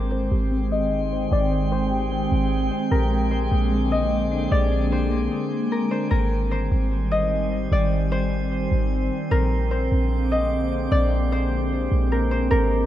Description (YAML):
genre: hip hop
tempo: 150 BPM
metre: 4/4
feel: half-time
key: Ab lydian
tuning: A4 = 440 Hz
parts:
  - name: concert harp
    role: melody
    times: 0.0-12.9 s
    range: Bb4 to Eb5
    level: -27 LUFS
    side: left 2 dB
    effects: low-pass filter, digital delay
  - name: warbly tape-like pad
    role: sustained chords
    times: 0.0-12.9 s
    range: D3 to G5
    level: -25 LUFS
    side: right 1 dB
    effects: chorus, built-in reverb, low-pass filter
  - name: clean electric guitar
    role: arpeggios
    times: 0.0-6.1 s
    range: Ab3 to G5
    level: -31 LUFS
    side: left 5 dB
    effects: tremolo, low-pass filter, digital delay
  - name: clean 808-style bass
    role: bass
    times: 0.0-12.9 s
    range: Ab1 to Bb1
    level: -23 LUFS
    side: equal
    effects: none
  - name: drifting glass-harmonics texture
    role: texture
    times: 0.0-12.9 s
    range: G3 to D6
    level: -34 LUFS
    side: equal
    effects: chorus, built-in reverb
room: light reverb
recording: rough home demo mix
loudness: -20 LUFS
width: side -12 dB against mid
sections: 0.0-6.1 A section; 6.1-12.9 B section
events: filter sweep 0.0-6.1; break 5.3-6.1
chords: 0.0 Abmaj7; 2.9 Bb13; 6.1 Abmaj7; 9.3 Bb13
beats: 0.12 0.52 0.92 | 1.32 1.72 2.12 2.52 | 2.92 3.32 3.72 4.12 | 4.52 4.92 5.32 5.72 | 6.12 6.52 6.92 7.32 | 7.72 8.12 8.52 8.92 | 9.32 9.72 10.12 10.52 | 10.92 11.32 11.72 12.12 | 12.52